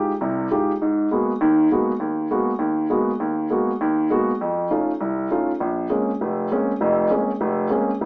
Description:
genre	jazz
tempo	200 BPM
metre	4/4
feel	swing 61% on 8ths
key	unclear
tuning	A4 = 440 Hz
part	warm concert grand piano	solo	0.0-8.1 s	F1 to G4	-19 LUFS	equal	none
room	wet studio reverb, RT60 0.8 s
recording	heard from further back in the room, small speaker sound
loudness	-19 LUFS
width	side -33 dB against mid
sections	0.0-5.6 A section; 5.6-8.1 B section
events	none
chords	0.0 Fm9; 0.8 Abm9; 4.4 F7b13; 5.6 Bbm9

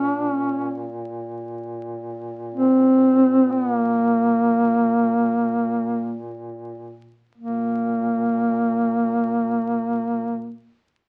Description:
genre	caucasian folk, Caucasian lament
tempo	free time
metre	none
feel	none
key	Bb minor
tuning	A4 = 440 Hz
part	mellow duduk	melody	0.0-10.5 s	Bb3 to Db4	-21 LUFS	equal	none
part	mellow duduk	drone	0.0-10.6 s	Bb2	-36 LUFS	equal	none
room	light reverb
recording	very old 78 rpm record, vinyl crackle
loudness	-21 LUFS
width	mono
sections	0.0-7.4 A section; 7.4-11.1 B section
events	slowing down 0.0-7.4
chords	none

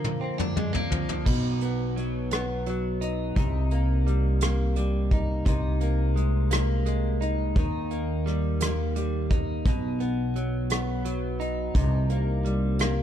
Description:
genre	six-eight pop ballad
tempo	57 BPM (dotted quarters)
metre	6/8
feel	straight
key	unclear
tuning	A4 = 440 Hz
part	direct-recorded clean electric guitar	accompaniment	0.0-13.0 s	B2 to D#4	-29 LUFS	equal	double-tracked left and right
part	soft brush drum kit	drums	0.0-13.0 s	crash cymbal, hi-hat, kick drum, rim click, toms	-28 LUFS	equal	none
part	upright bass	bass	1.3-13.0 s	B1 to Eb2	-26 LUFS	equal	none
room	little or no reverb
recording	dark, warm production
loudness	-24 LUFS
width	side -10 dB against mid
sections	0.0-1.3 A section; 1.3-13.0 B section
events	drum fill 0.0-1.3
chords	0.0 Bb/D; 1.3 B; 3.4 Cm7; 5.5 Abadd9/C; 7.6 Eb; 9.7 B; 11.7 Cm7

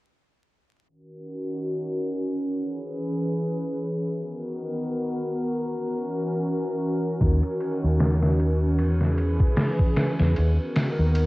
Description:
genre	trip hop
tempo	76 BPM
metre	4/4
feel	swing 56% on 16ths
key	Eb phrygian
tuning	A4 = 443 Hz
part	warbly tape-like pad	sustained chords	1.2-11.3 s	Eb3 to B4	-26 LUFS	equal	chorus, built-in reverb, vintage 12-bit sampler grit, cassette tape
part	deep dub fingered electric bass	bass	7.2-11.3 s	Eb2 to E2	-21 LUFS	equal	none
part	trip hop sampler-style drum kit	drums	7.2-11.3 s	hi-hat, kick drum, ride cymbal, snare drum	-24 LUFS	equal	cassette tape
room	digital ambience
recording	home recording on cassette, vinyl crackle, low-pass filter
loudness	-23 LUFS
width	side -20 dB against mid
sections	0.9-11.3 A section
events	filter sweep 0.9-11.3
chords	0.9 Ebm7; 2.5 E6; 4.1 Bmaj7/D#; 5.6 Gb7; 7.2 Ebm7; 8.8 E6; 10.4 Bmaj7/D#

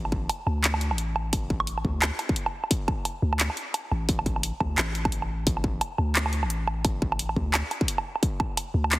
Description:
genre	half-time drum and bass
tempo	174 BPM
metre	4/4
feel	swing 59% on 16ths, half-time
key	unclear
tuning	A4 = 440 Hz
part	long sustained 808-style bass	bass	0.0-9.0 s	A1 to D2	-28 LUFS	equal	none
part	drum and bass drum kit	drums	0.1-9.0 s	handclaps, hi-hat, woodblock	-27 LUFS	right 1 dB	none
part	electronic kick drum	drums	0.1-8.5 s	none	-27 LUFS	equal	distortion
room	light reverb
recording	heavily compressed radio sound, multiband compression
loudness	-24 LUFS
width	side -18 dB against mid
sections	0.0-9.0 A section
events	none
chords	none

